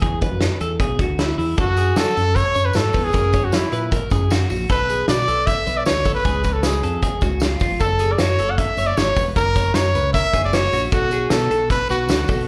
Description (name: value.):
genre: jangly indie pop.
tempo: 154 BPM.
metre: 4/4.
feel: straight.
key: F# minor.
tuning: A4 = 439 Hz.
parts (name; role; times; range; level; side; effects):
twelve-string electric guitar; arpeggios; 0.0-12.5 s; E4 to C#5; -29 LUFS; equal; slapback echo.
fingered electric bass; bass; 0.0-12.5 s; E1 to F#3; -25 LUFS; equal; none.
loose indie drum kit; drums; 0.0-12.4 s; hi-hat, kick drum, snare drum; -24 LUFS; equal; none.
clear trumpet; melody; 1.6-12.4 s; E4 to F#5; -23 LUFS; equal; slapback echo.
tambourine; percussion; 1.6-12.4 s; none; -42 LUFS; equal; none.
room: light reverb, small room ambience.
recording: live gig heard through the venue's PA, club reverb.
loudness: -19 LUFS.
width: mono.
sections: 0.0-1.6 A section; 1.6-12.5 B section.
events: none.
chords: 0.0 E; 1.6 F#m; 3.1 F#7; 4.7 Bm; 6.3 C#; 7.8 F#m; 9.4 F#; 10.9 B5.